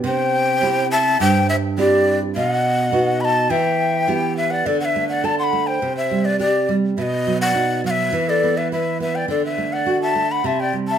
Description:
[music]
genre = andean folk, Andean ensemble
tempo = 104 BPM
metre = 2/4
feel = straight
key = unclear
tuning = A4 = 440 Hz
[part]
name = nylon-string guitar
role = accompaniment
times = 0.0-11.0 s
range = G2 to B4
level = -21 LUFS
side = right 4 dB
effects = none
[part]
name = breathy large quena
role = melody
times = 0.1-11.0 s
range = D5 to C6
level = -20 LUFS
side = left 2 dB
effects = plate reverb
[part]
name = reedy pan flute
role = second line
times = 0.1-11.0 s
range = G4 to F#5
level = -24 LUFS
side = left 2 dB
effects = none
[sound]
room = wet studio reverb, RT60 0.5 s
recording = none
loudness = -17 LUFS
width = side -9 dB against mid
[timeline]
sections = 0.0-4.7 A section; 4.7-11.0 B section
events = none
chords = 0.0 C; 2.4 B; 3.5 Em; 4.7 D5; 5.8 C5; 7.0 B; 8.1 E5; 9.3 D; 10.4 C

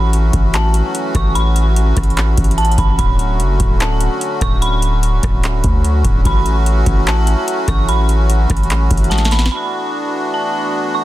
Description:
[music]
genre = hip hop, atmospheric cloud-rap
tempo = 147 BPM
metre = 4/4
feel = half-time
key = A major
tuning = A4 = 440 Hz
[part]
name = dark detuned synth bell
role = melody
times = 0.0-11.0 s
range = A5 to C#6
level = -23 LUFS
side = right 1 dB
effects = chorus, phaser, low-pass filter, tape echo
[part]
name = accordion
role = sustained chords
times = 0.0-11.0 s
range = D3 to F#4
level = -21 LUFS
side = equal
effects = light tremolo tuning, sidechain pumping
[part]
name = long sustained 808-style bass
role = bass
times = 0.0-9.5 s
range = D1 to D2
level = -14 LUFS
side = equal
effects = none
[part]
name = booming analog drum machine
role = drums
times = 0.1-9.5 s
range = handclaps, hi-hat, kick drum, rim click, snare drum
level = -17 LUFS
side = equal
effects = none
[sound]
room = little or no reverb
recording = dense, heavily limited modern master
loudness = -12 LUFS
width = side -15 dB against mid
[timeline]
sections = 0.0-9.5 A section; 9.5-11.0 B section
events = drum fill 9.1-9.5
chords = 0.0 A6; 3.0 Dmaj7; 6.3 A6; 9.5 E9sus4

